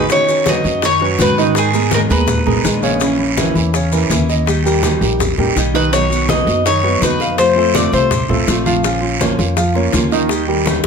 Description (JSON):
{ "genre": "latin, Cuban son and guajira", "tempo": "165 BPM", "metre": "4/4", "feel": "straight", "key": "unclear", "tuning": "A4 = 440 Hz", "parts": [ { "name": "Cuban tres", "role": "melody", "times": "0.0-2.8, 5.8-8.6 s", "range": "G#4 to D#5", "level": "-16 LUFS", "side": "left 2 dB", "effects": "plate reverb, tape echo" }, { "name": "nylon-string guitar", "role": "accompaniment", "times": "0.0-10.9 s", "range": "B2 to A#4", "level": "-21 LUFS", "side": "left 2 dB", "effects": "none" }, { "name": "dark concert grand piano", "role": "arpeggios", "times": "0.0-10.9 s", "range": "C#3 to A#5", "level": "-19 LUFS", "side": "right 4 dB", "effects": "none" }, { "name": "upright bass", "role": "bass", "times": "0.0-10.9 s", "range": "A#1 to G#2", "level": "-19 LUFS", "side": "equal", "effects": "none" }, { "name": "bongos", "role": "percussion", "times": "0.1-10.9 s", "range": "none", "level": "-24 LUFS", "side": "left 9 dB", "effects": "none" }, { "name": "congas", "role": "percussion", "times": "0.1-10.8 s", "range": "none", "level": "-23 LUFS", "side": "equal", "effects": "none" }, { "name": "guiro", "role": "percussion", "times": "0.1-10.8 s", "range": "none", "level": "-25 LUFS", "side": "right 7 dB", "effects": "none" }, { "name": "maracas", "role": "percussion", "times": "0.1-10.8 s", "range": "none", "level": "-27 LUFS", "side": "left 5 dB", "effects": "none" } ], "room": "light reverb", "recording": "none", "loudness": "-12 LUFS", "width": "side -6 dB against mid", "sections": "0.1-10.9 A section", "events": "none", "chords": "0.1 Badd9; 1.6 G#madd9; 3.0 A#dim; 4.5 D#; 5.9 B; 7.4 F; 8.8 A#m; 10.3 D#", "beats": "| 0.10 0.46 0.83 1.19 | 1.55 1.92 2.28 2.65 | 3.01 3.38 3.74 4.11 | 4.47 4.83 5.20 5.56 | 5.93 6.29 6.66 7.02 | 7.38 7.75 8.11 8.48 | 8.84 9.21 9.57 9.93 | 10.30 10.66" }